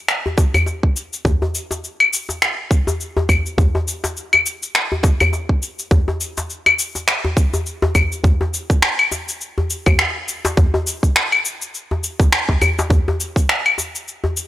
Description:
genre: downtempo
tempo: 103 BPM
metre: 4/4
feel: swing 57% on 16ths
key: none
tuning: none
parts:
  - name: electronic finger snaps, cabasa and claves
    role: drums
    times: 0.1-14.5 s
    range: none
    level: -16 LUFS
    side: left 2 dB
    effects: overdrive
  - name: djembe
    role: percussion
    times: 0.3-14.3 s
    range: none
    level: -20 LUFS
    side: left 1 dB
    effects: none
  - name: electronic kick drum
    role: drums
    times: 0.4-13.5 s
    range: none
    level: -15 LUFS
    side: equal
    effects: none
room: digital ambience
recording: dry, gritty hardware recording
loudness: -15 LUFS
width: side -14 dB against mid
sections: 0.0-8.2 A section; 8.2-14.5 B section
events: none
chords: none

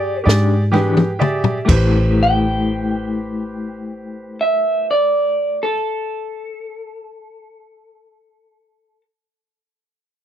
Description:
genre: slow blues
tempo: 41 BPM (dotted quarters)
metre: 12/8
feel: straight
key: A minor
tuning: A4 = 437 Hz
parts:
  - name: electric guitar through a small old amp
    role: melody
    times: 0.0-9.0 s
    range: A4 to G5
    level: -19 LUFS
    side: right 1 dB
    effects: none
  - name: bright upright piano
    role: accompaniment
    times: 0.0-5.8 s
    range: G4 to G5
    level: -24 LUFS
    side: right 2 dB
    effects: none
  - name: vintage muted fingered electric bass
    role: bass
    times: 0.0-5.7 s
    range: A1 to G#2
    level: -18 LUFS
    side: equal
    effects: none
  - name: electric guitar through a small old amp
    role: accompaniment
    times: 0.3-5.8 s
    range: E3 to G4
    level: -21 LUFS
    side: left 3 dB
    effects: tremolo
  - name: compact cocktail drum kit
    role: drums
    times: 0.3-1.9 s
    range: crash cymbal, kick drum, snare drum, toms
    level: -18 LUFS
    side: left 1 dB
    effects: none
room: small room ambience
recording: dry, close 1970s-style studio recording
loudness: -15 LUFS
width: side -10 dB against mid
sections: 0.0-1.7 A section; 1.7-7.5 B section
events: slowing down 0.0-1.7; drum fill 0.3-1.7; upright piano fill 0.3-1.7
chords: 0.0 E7#9; 1.7 Am7

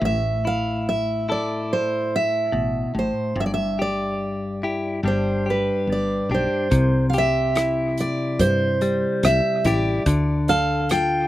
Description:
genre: acoustic folk-pop ballad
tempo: 72 BPM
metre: 4/4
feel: straight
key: C major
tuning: A4 = 440 Hz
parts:
  - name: picked steel-string acoustic guitar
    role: melody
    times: 0.0-11.3 s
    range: B4 to G5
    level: -23 LUFS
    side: right 2 dB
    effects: none
  - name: direct-recorded clean electric guitar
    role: accompaniment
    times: 0.0-11.3 s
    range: G2 to A4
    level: -24 LUFS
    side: left 2 dB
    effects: none
  - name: woody fretless electric bass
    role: bass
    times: 0.0-11.3 s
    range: G1 to G2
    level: -25 LUFS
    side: equal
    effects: none
  - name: loose indie drum kit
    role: drums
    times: 6.7-11.1 s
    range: hi-hat, kick drum, rim click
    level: -27 LUFS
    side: equal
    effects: none
room: little or no reverb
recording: recorded outdoors, with no room sound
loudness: -19 LUFS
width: side -14 dB against mid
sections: 0.0-6.7 A section; 6.7-11.3 B section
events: none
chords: 0.0 A5; 3.4 Em7/G; 5.0 G; 6.7 C; 10.1 Dm

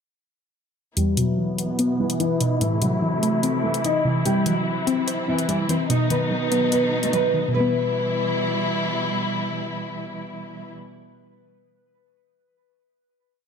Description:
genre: hip hop, drill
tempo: 146 BPM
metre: 4/4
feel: half-time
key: E harmonic minor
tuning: A4 = 440 Hz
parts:
  - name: nylon-string guitar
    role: melody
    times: 1.0-8.7 s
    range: E3 to D#5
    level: -24 LUFS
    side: equal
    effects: wide subtle chorus, low-pass filter, tape echo
  - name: warbly dusty pluck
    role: accompaniment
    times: 1.0-10.8 s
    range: E2 to C5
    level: -24 LUFS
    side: equal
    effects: chorus, low-pass filter
  - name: warm symphonic string section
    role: sustained chords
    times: 1.0-10.7 s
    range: B2 to E4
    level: -26 LUFS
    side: equal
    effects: low-pass filter
  - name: electronic hi-hat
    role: drums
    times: 1.0-7.2 s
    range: none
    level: -28 LUFS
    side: left 4 dB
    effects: none
room: moderate plate reverb, RT60 1.7 s, small room ambience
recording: dreamy mix soaked in reverb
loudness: -20 LUFS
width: side -6 dB against mid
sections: 1.0-7.5 breakdown; 7.5-10.8 final chord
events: filter sweep 1.0-7.5; kick muted 6.7-7.5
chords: 1.0 Em; 2.6 Am; 4.3 C; 5.9 B; 7.5 Em

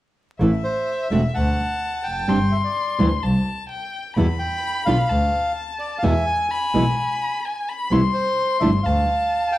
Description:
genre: tango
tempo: 128 BPM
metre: 4/4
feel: rubato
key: A minor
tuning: A4 = 440 Hz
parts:
  - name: warm violin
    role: second line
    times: 0.4-9.6 s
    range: E5 to C6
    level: -26 LUFS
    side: left 3 dB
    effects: none
  - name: flamenco guitar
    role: accompaniment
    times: 0.4-8.7 s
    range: B2 to G4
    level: -22 LUFS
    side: right 1 dB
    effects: none
  - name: clear double bass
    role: bass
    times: 0.4-9.0 s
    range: E1 to E2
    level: -22 LUFS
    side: equal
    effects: none
  - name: bandoneon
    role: melody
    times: 0.6-9.6 s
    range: C5 to G#5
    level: -24 LUFS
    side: equal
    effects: slapback echo
room: moderate studio reverb, RT60 0.9 s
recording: heard from further back in the room, vinyl crackle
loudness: -19 LUFS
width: side -15 dB against mid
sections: 0.4-9.6 A section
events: none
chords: 0.4 Am; 1.4 D; 2.3 Gsus4; 3.2 C5; 4.2 Em; 5.1 Dm; 6.0 E; 7.9 C; 8.8 Dm

